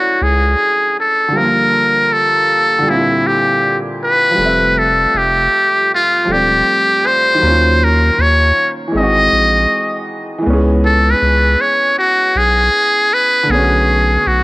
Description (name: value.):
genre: lo-fi hip hop.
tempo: 79 BPM.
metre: 4/4.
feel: swing 66% on 16ths.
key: unclear.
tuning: A4 = 440 Hz.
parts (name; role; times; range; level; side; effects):
trumpet with metal mute; melody; 0.0-14.4 s; E4 to D#5; -12 LUFS; equal; low-pass filter, analog delay.
felt-muted upright piano; accompaniment; 0.0-14.4 s; Bb2 to E5; -19 LUFS; equal; low-pass filter, cassette tape.
round analog bass; bass; 0.2-14.4 s; E1 to D#2; -16 LUFS; equal; none.
room: light reverb, small room ambience.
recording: home recording on cassette.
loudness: -10 LUFS.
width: side -21 dB against mid.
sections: 0.0-14.4 A section.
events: none.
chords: 0.0 Dmaj9; 1.3 Gm7; 2.9 C9; 4.4 Fmaj7; 7.4 D#m9; 8.9 G#7b13; 10.5 C#m7; 13.5 Bm9.